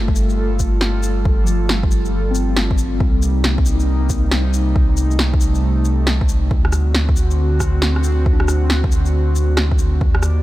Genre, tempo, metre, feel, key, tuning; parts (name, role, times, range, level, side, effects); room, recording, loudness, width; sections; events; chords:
future garage; 137 BPM; 4/4; swing 64% on 16ths; A4 = 440 Hz
mellow tine electric piano; accompaniment; 0.0-10.0 s; F3 to Eb4; -27 LUFS; left 3 dB; overdrive, medium stereo tremolo, sidechain pumping, tape echo
airy breathy pad; sustained chords; 0.0-10.4 s; C3 to D5; -24 LUFS; equal; chorus, vintage 12-bit sampler grit, sidechain pumping
warm sub bass; bass; 0.0-10.4 s; G1 to Eb2; -17 LUFS; equal; sidechain pumping
electronic kick drum; drums; 0.1-10.1 s; -18 LUFS; equal; overdrive
electronic shaker, snare drum and rim click; drums; 0.2-10.3 s; -23 LUFS; equal; overdrive
digital ambience; -14 LUFS; side -16 dB against mid
0.0-10.4 A section
0.0 Gsus2; 3.0 Cm7; 6.5 D7